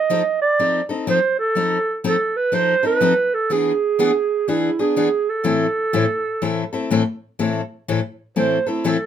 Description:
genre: jazz.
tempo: 123 BPM.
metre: 4/4.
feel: swing 63% on 8ths.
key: A minor.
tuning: A4 = 443 Hz.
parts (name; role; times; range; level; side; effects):
breathy clarinet; melody; 0.0-9.1 s; E4 to Eb5; -18 LUFS; right 5 dB; none.
picked steel-string acoustic guitar; accompaniment; 0.1-9.0 s; A2 to A4; -20 LUFS; left 5 dB; none.
room: light reverb.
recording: minimal, uncompressed stereo recording.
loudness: -17 LUFS.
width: side -9 dB against mid.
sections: 0.0-7.4 A section; 7.4-9.1 B section.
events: clarinet solo 7.4-9.1.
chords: 0.0 F7; 3.5 E7; 5.4 Am.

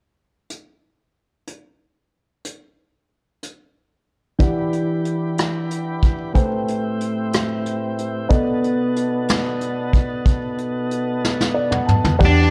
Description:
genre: slow blues.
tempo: 62 BPM (dotted quarters).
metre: 12/8.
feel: straight.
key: unclear.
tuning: A4 = 440 Hz.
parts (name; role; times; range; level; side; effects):
vintage brush drum kit; drums; 0.5-12.4 s; hi-hat, kick drum, ride cymbal, rim click, snare drum, toms; -21 LUFS; equal; none.
dark upright piano; accompaniment; 4.4-12.4 s; E3 to A5; -26 LUFS; equal; none.
tonewheel organ; sustained chords; 4.4-12.5 s; A2 to B4; -27 LUFS; equal; slow rotary speaker.
vintage muted fingered electric bass; bass; 12.2-12.5 s; E2; -17 LUFS; equal; none.
overdriven electric guitar; melody; 12.3-12.5 s; D4; -18 LUFS; equal; spring reverb.
room: light reverb, small room ambience.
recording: dark, warm production.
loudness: -20 LUFS.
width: mono.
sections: 0.5-4.4 A section; 4.4-12.2 B section.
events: drum fill 11.2-12.2; upright piano fill 11.2-12.2.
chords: 0.5 N.C.; 4.4 Em7; 6.4 Am7; 8.3 B7#9.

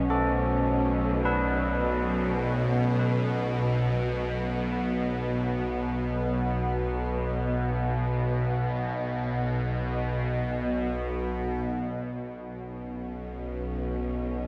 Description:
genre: dark ambient drone.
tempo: free time.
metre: none.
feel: none.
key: unclear.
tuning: A4 = 438 Hz.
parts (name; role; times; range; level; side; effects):
muted symphonic cello section; sustained chords; 0.0-14.5 s; B2 to C#4; -37 LUFS; equal; none.
carillon bells; arpeggios; 0.0-8.2 s; B2 to B4; -35 LUFS; equal; delay.
bowed-like drone; drone; 0.0-14.5 s; B1 to B2; -30 LUFS; equal; built-in reverb, phaser.
room: wet huge ambient reverb, RT60 7.6 s.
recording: none.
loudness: -28 LUFS.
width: mono.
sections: 0.0-11.7 A section; 11.7-14.5 A section.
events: fade-out on cello section 0.0-11.7.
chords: 0.0 B5.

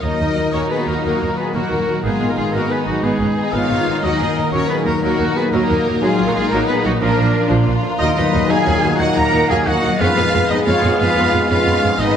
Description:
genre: cinematic.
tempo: 120 BPM (dotted quarters).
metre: 12/8.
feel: straight.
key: Eb minor.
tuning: A4 = 440 Hz.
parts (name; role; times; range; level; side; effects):
warm studio violin section; melody; 0.0-12.2 s; Gb4 to Bb5; -23 LUFS; left 2 dB; none.
mellow small flute group; second line; 0.0-12.2 s; Eb4 to Gb5; -26 LUFS; equal; none.
rich symphonic violin section; second line; 0.0-12.2 s; Bb3 to Bb4; -26 LUFS; left 1 dB; none.
warm oboe; second line; 0.0-12.2 s; Gb4 to Bb5; -24 LUFS; equal; none.
rich symphonic viola section; accompaniment; 0.0-12.1 s; D3 to Gb4; -25 LUFS; equal; none.
mellow French horn section; sustained chords; 0.0-12.2 s; Bb2 to Ab4; -24 LUFS; left 3 dB; none.
mellow trombone section; sustained chords; 0.0-12.2 s; Ab2 to Ab3; -25 LUFS; right 2 dB; none.
concert harp; arpeggios; 0.0-12.2 s; Ab2 to Cb6; -24 LUFS; left 5 dB; none.
warm symphonic cello section; bass; 0.0-12.2 s; Gb3 to Bb4; -24 LUFS; right 1 dB; none.
warm symphonic double bass section; bass; 0.0-12.1 s; Ab1 to F2; -22 LUFS; right 3 dB; none.
room: wet scoring stage reverb, RT60 1.8 s.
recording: nothing above 11.0 kHz.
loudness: -14 LUFS.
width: side -8 dB against mid.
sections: 0.0-12.2 A section.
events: none.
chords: 0.0 Ebm; 2.0 Abm; 4.0 Ebm; 6.0 Ebm/Bb; 7.0 Bb; 8.0 Ebm; 10.0 Fdim.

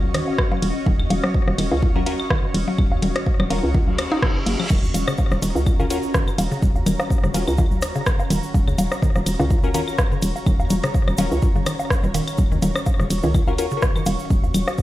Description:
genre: minimal techno.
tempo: 125 BPM.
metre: 4/4.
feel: swing 55% on 16ths.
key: Eb minor.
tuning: A4 = 440 Hz.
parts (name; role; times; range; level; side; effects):
hollow knocking FM bass; bass; 0.0-14.6 s; Eb1 to Eb2; -23 LUFS; equal; sidechain pumping.
electronic congas, rim click, woodblock and claves; percussion; 0.0-14.8 s; none; -28 LUFS; left 2 dB; ping-pong delay.
granular cloud pad; texture; 0.0-14.8 s; Db4 to Db6; -29 LUFS; equal; built-in reverb, sidechain pumping.
mallet-like synth pluck; riff; 0.1-14.1 s; Db3 to Eb4; -28 LUFS; equal; chorus, sidechain pumping, ping-pong delay.
minimal click drum kit; drums; 0.1-14.7 s; crash cymbal, hi-hat, ride cymbal, rim click; -28 LUFS; equal; none.
electronic kick drum; drums; 0.4-14.8 s; none; -20 LUFS; equal; none.
wavetable chord stab; stabs; 2.0-13.7 s; Db4 to Bb4; -27 LUFS; left 4 dB; ping-pong delay.
reverse cymbal; sound effects; 3.9-4.7 s; none; -29 LUFS; right 1 dB; none.
egg shaker; percussion; 4.7-14.8 s; none; -37 LUFS; equal; none.
room: light reverb.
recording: played on a big sound system in a bare room, stone room reverb.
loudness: -18 LUFS.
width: side -15 dB against mid.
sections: 0.0-14.8 A section.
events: reverse cymbal 3.9-4.7.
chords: 0.0 Ebm7.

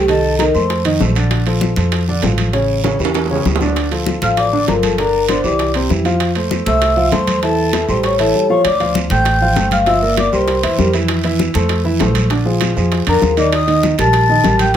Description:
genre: Afro-Cuban jazz.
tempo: 196 BPM.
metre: 4/4.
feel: straight.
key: D minor from 8.6 s.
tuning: A4 = 438 Hz.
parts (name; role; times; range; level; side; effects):
vibraphone with soft mallets; melody; 0.0-0.8, 4.2-10.9, 13.1-14.8 s; A4 to A5; -16 LUFS; left 1 dB; none.
breathy mellow silver concert flute; second line; 0.0-0.8, 4.2-10.9, 13.1-14.7 s; A5 to A6; -21 LUFS; left 3 dB; none.
warm grand piano; accompaniment; 0.0-14.8 s; C3 to F5; -18 LUFS; right 1 dB; none.
upright bass; bass; 0.0-14.8 s; G1 to F2; -19 LUFS; equal; none.
bongos; percussion; 0.1-14.8 s; none; -25 LUFS; left 7 dB; none.
congas; percussion; 0.1-14.7 s; none; -24 LUFS; left 2 dB; none.
guiro; percussion; 0.1-14.8 s; none; -29 LUFS; right 6 dB; none.
timbales; percussion; 0.1-14.8 s; none; -24 LUFS; right 8 dB; none.
room: light reverb.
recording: none.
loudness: -13 LUFS.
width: side -10 dB against mid.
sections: 0.0-8.6 A section; 8.6-14.8 B section.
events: drum fill 2.8-3.8.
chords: 0.1 Cm; 0.7 F6; 1.3 Bbmaj7; 2.5 A7; 3.8 Dm; 5.0 Gm; 5.6 C; 6.2 Fmaj7; 7.4 Am7; 8.0 A7; 8.6 Dm7; 9.9 Gm7; 10.5 C7; 11.1 Fmaj7; 12.3 Bb7; 13.5 Eb.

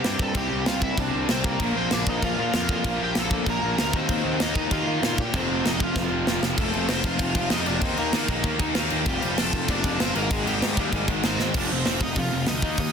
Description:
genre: punk rock.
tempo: 193 BPM.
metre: 4/4.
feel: straight.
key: unclear.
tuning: A4 = 440 Hz.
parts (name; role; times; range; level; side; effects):
overdriven semi-hollow guitar; melody; 0.0-12.9 s; G3 to Bb5; -30 LUFS; equal; digital delay.
biting overdriven guitar; riff; 0.0-12.9 s; F2 to Eb4; -30 LUFS; right 14 dB; none.
cranked stack guitar; riff; 0.0-12.9 s; F2 to Eb4; -30 LUFS; left 14 dB; overdrive.
fuzz picked electric bass; bass; 0.0-12.9 s; F1 to Eb3; -30 LUFS; equal; overdrive.
tight metal drum kit; drums; 0.0-12.9 s; crash cymbal, hi-hat, kick drum, snare drum; -26 LUFS; equal; none.
heavy high-gain guitar; riff; 1.6-12.9 s; F2 to Eb4; -33 LUFS; equal; distortion.
room: light reverb.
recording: dense, heavily limited modern master.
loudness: -22 LUFS.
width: side -7 dB against mid.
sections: 0.0-6.6 A section; 6.6-11.5 B section; 11.5-12.9 C section.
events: drum fill 6.0-6.6, 11.4.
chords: 0.0 C5; 1.6 Bb5; 3.9 Eb5; 5.3 F5; 7.8 Eb5; 9.1 F; 10.2 Ab; 11.5 F5.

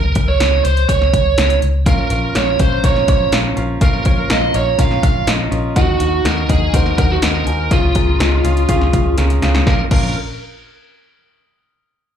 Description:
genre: piano-driven pop.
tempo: 123 BPM.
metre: 4/4.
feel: straight.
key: Bb minor.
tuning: A4 = 439 Hz.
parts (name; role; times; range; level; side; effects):
biting lead guitar; melody; 0.0-10.1 s; F4 to F5; -18 LUFS; right 3 dB; overdrive, plate reverb, slapback echo.
vintage muted fingered electric bass; bass; 0.0-10.1 s; Bb1 to Eb2; -18 LUFS; equal; none.
deep house drum kit; drums; 0.2-10.0 s; crash cymbal, hi-hat, kick drum, snare drum; -17 LUFS; left 1 dB; overdrive.
clear baby grand piano; accompaniment; 1.9-10.1 s; Bb1 to Ab5; -22 LUFS; right 1 dB; plate reverb, slapback echo.
room: light reverb.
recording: live gig heard through the venue's PA, club reverb.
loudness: -12 LUFS.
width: side -8 dB against mid.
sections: 0.0-9.7 A section; 9.7-11.6 B section.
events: drum fill 9.2-9.7.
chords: 0.0 N.C.; 1.9 Bbm; 5.8 Ebm; 7.7 Db; 9.7 Bbm.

